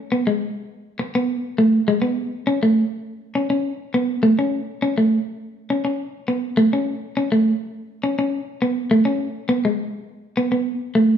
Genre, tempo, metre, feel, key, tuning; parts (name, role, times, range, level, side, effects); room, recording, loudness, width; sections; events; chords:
highlife; 102 BPM; 4/4; straight; A major; A4 = 441 Hz
clean electric guitar; solo; 0.1-11.2 s; G#3 to C#4; -18 LUFS; equal
wet stone room reverb, RT60 1.3 s; band playing live in one room; -19 LUFS; side -8 dB against mid
0.0-11.2 A section